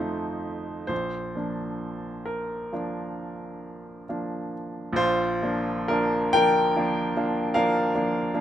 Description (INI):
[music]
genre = classical, romantic nocturne for solo piano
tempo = 43-51 BPM (dotted quarters)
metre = 9/8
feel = rubato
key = Bb major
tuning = A4 = 440 Hz
[part]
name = clear baby grand piano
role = solo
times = 0.0-8.4 s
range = Bb1 to G5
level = -24 LUFS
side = equal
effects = none
[sound]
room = little or no reverb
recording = close, detailed microphones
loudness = -24 LUFS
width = side -11 dB against mid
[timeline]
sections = 0.0-5.0 A section; 5.0-8.4 A section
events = none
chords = 0.0 F7; 0.9 Bb